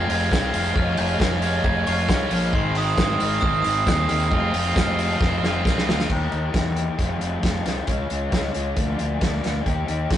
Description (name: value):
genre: indie rock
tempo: 135 BPM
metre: 4/4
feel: straight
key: F minor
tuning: A4 = 441 Hz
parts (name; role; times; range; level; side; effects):
- glockenspiel with brass mallets; melody; 0.0-5.8 s; C6 to Bb6; -27 LUFS; right 4 dB; none
- overdriven electric guitar; riff; 0.0-6.1 s; Eb3 to F4; -27 LUFS; right 2 dB; none
- raw garage guitar; riff; 0.0-10.2 s; Eb3 to G4; -27 LUFS; left 4 dB; overdrive
- fuzz fingered electric bass; bass; 0.0-10.2 s; F1 to G2; -25 LUFS; equal; overdrive
- tambourine; percussion; 0.0-6.1 s; none; -42 LUFS; left 3 dB; none
- loose indie drum kit; drums; 0.1-10.2 s; crash cymbal, hi-hat, kick drum, snare drum; -24 LUFS; equal; none
room: wet stone room reverb, RT60 1.0 s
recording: rough rehearsal-room recording, tube saturation, nothing above 10.9 kHz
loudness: -19 LUFS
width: side -11 dB against mid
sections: 0.0-6.1 A section; 6.1-10.2 B section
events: drum fill 5.2-6.1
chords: 0.0 Fm; 0.8 Db/F; 2.5 Ab; 4.3 Fm; 6.1 Eb; 7.0 Fm; 7.9 Db; 8.8 Bb/D; 9.7 Eb